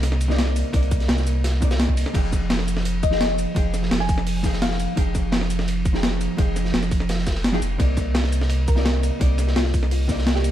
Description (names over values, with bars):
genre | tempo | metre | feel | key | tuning
liquid drum and bass | 170 BPM | 4/4 | straight | F minor | A4 = 440 Hz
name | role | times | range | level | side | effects
vintage hollow-body jazz guitar | accompaniment | 0.0-10.5 s | C3 to G5 | -27 LUFS | right 1 dB | none
sub bass with octave | bass | 0.0-10.5 s | F1 to C2 | -23 LUFS | equal | none
breakbeat sampler-style drum kit | drums | 0.0-10.5 s | crash cymbal, hi-hat, shaker, snare drum | -26 LUFS | equal | studio reverb
crunchy breakbeat drum kit | drums | 0.0-10.5 s | hi-hat, ride cymbal, snare drum | -32 LUFS | equal | high-pass filter on cymbals, studio reverb, high-pass filter on hats, high-pass filter on snare, high-pass filter on room
electronic kick drum | drums | 0.7-10.2 s | none | -21 LUFS | equal | studio reverb
thumb-piano-like synth pluck | melody | 3.0-4.9, 8.7-10.5 s | F4 to Ab5 | -29 LUFS | left 3 dB | phaser, lush chorus, digital delay
room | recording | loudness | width
light reverb | dark, warm production | -19 LUFS | side -12 dB against mid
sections
0.0-2.1 A section; 2.1-10.5 A section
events
drop 0.0-2.1, 2.1-10.5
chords
0.0 Cm9; 2.1 Fm9; 7.8 Cm9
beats
0.03 0.39 | 0.74 1.09 1.44 1.80 | 2.15 2.50 2.86 3.21 | 3.56 3.92 4.27 4.62 | 4.97 5.33 5.68 6.03 | 6.38 6.74 7.09 7.44 | 7.80 8.15 8.50 8.86 | 9.21 9.56 9.91 10.27